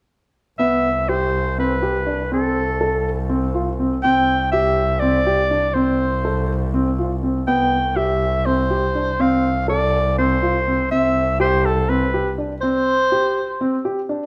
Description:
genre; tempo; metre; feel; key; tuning
contemporary instrumental, contemporary; 244 BPM (eighths); 7/8; straight; C major; A4 = 439 Hz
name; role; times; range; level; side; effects
breathy soprano saxophone; melody; 0.6-13.8 s; A4 to G5; -22 LUFS; equal; none
warm baby grand piano; arpeggios; 0.6-14.2 s; B3 to A4; -24 LUFS; equal; none
rich double bass; bass; 0.6-12.6 s; C2; -26 LUFS; equal; none
room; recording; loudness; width
moderate recital hall reverb, RT60 1.5 s; none; -19 LUFS; mono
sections
0.6-14.3 A section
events
none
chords
0.6 Cmaj7; 2.3 F/C (rootless); 4.0 Cadd9; 5.8 F/C (rootless); 7.5 Cmaj7; 9.2 Dm7/C; 10.9 C5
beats
| 0.59 0.84 1.08 1.33 1.58 1.82 2.07 | 2.31 2.56 2.81 3.05 3.30 3.54 3.79 | 4.04 4.28 4.53 4.78 5.02 5.27 5.51 | 5.76 6.00 6.25 6.50 6.74 6.99 7.23 | 7.48 7.72 7.97 8.21 8.46 8.70 8.95 | 9.20 9.44 9.69 9.93 10.18 10.42 10.67 | 10.91 11.16 11.40 11.65 11.89 12.14 12.38 | 12.63 12.87 13.12 13.36 13.61 13.85 14.10

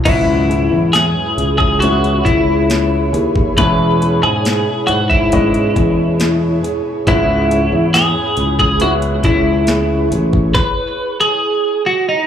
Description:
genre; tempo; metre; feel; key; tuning
pop ballad; 69 BPM; 4/4; straight; unclear; A4 = 443 Hz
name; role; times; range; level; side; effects
clear concert grand piano; accompaniment; 0.0-10.6 s; G#2 to D#5; -21 LUFS; left 2 dB; slapback echo
ethereal airy pad; sustained chords; 0.0-10.5 s; E4 to C#6; -22 LUFS; right 3 dB; ensemble chorus, built-in reverb
flamenco guitar; arpeggios; 0.0-10.6 s; C#3 to B4; -25 LUFS; equal; slapback echo, tape echo
twelve-string electric guitar; melody; 0.1-12.3 s; D#4 to B4; -16 LUFS; left 1 dB; vibrato effect, slapback echo, tape echo
sustaining fretless electric bass; bass; 0.1-10.5 s; A1 to G#2; -17 LUFS; equal; none
smooth R&B drum kit; drums; 0.1-10.8 s; crash cymbal, hi-hat, kick drum, snare drum; -19 LUFS; equal; overdrive
room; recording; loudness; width
light reverb, digital ambience; live gig heard through the venue's PA, club reverb; -12 LUFS; side -9 dB against mid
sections
0.1-12.3 A section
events
none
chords
0.1 C#m7; 3.6 E6; 7.1 C#m7; 10.6 N.C.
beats
| 0.06 0.94 1.82 2.70 | 3.58 4.45 5.32 6.20 | 7.07 7.94 8.81 9.68 | 10.55 11.43

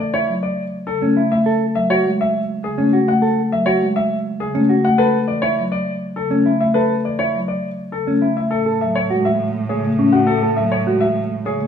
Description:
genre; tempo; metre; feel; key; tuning
classical, minimalist pattern music; 102 BPM; 3/4; straight; A major; A4 = 444 Hz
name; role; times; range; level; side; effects
bright baby grand piano; melody; 0.0-11.7 s; G#4 to F#5; -21 LUFS; left 3 dB; none
marimba with soft mallets; accompaniment; 0.0-11.7 s; C#3 to A3; -20 LUFS; left 1 dB; none
mellow electric guitar; arpeggios; 0.1-11.7 s; C#4 to C#5; -20 LUFS; equal; none
rich cello; bass; 8.5-11.7 s; A2; -24 LUFS; right 2 dB; none
room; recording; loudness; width
wet large studio reverb, RT60 1.2 s; small room ambience; -16 LUFS; side -8 dB against mid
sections
0.0-8.5 A section; 8.5-11.7 A section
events
none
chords
0.0 C#madd11; 1.5 Amaj7; 5.0 Bm9 (rootless); 8.5 A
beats
0.28 0.87 | 1.46 2.05 2.64 | 3.22 3.81 4.40 | 4.99 5.58 6.17 | 6.75 7.34 7.93 | 8.52 9.11 9.70 | 10.28 10.87 11.46

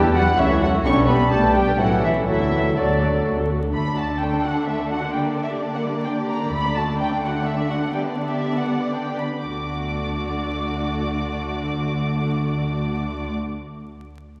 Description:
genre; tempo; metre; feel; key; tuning
quick classical-period movement for symphony orchestra; 112-131 BPM; 3/4; straight; D major; A4 = 440 Hz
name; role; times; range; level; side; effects
concert flute; second line; 0.0-3.3 s; D5 to C#6; -31 LUFS; equal; none
dark clarinet; second line; 0.0-3.5 s; A4 to D5; -32 LUFS; equal; none
mellow oboe; second line; 0.0-3.5 s; G4 to C#5; -32 LUFS; equal; none
muted chamber violin section; second line; 0.0-13.3 s; G3 to D5; -32 LUFS; equal; none
muted symphonic viola section; accompaniment; 0.0-13.3 s; A3 to C#5; -30 LUFS; equal; none
warm bassoon; accompaniment; 0.0-3.5 s; E3 to A3; -28 LUFS; equal; none
muted studio double bass section; bass; 0.0-4.2, 6.5-7.0, 9.5-13.3 s; A1 to E2; -28 LUFS; equal; none
muted studio violin section; melody; 0.2-13.3 s; D5 to D6; -30 LUFS; equal; none
muted studio cello section; bass; 0.2-13.3 s; D3 to C#4; -30 LUFS; equal; none
warm French horn section; sustained chords; 0.4-2.4 s; G3 to F#4; -32 LUFS; equal; none
room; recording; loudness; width
wet church reverb, RT60 2.6 s; recorded in a church or concert hall, vinyl crackle; -22 LUFS; mono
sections
0.0-3.7 A section; 3.7-9.5 B section; 9.5-12.6 C section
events
slowing down 5.8-9.5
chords
0.4 A/C#; 0.9 G/B; 1.8 A; 2.3 D; 5.1 Gm/D; 6.5 D; 7.9 G/D; 9.5 D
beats
0.39 | 0.85 1.32 1.79 | 2.28 2.77 3.26 | 3.74 4.21 4.67 | 5.13 5.59 6.05 | 6.52 6.98 7.46 | 7.93 8.43 8.93 | 9.46 9.98 10.49 | 11.00 11.52 12.04

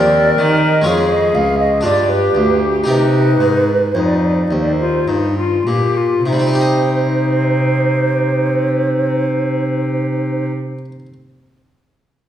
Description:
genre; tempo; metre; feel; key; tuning
classical, baroque-style sonata movement with continuo; 50-64 BPM; 3/4; straight; C minor; A4 = 440 Hz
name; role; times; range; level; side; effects
bright tenor recorder; melody; 0.0-10.5 s; Eb4 to Bb4; -19 LUFS; left 3 dB; none
mellow hollow silver concert flute; second line; 0.0-10.5 s; B4 to F5; -18 LUFS; right 3 dB; none
harpsichord; accompaniment; 0.0-11.1 s; Db2 to Eb5; -20 LUFS; equal; none
rich cello; bass; 0.0-10.5 s; Db2 to Eb3; -18 LUFS; right 1 dB; none
room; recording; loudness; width
wet recital hall reverb, RT60 1.4 s; heard from further back in the room; -13 LUFS; side -10 dB against mid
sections
0.0-6.3 A section; 6.3-9.8 B section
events
slowing down 0.0-6.3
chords
0.0 Cm/Eb; 0.9 Db/F; 1.8 G7; 2.9 Cm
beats
0.87 1.85 | 2.87 3.96 5.08 | 6.26 7.43 8.60

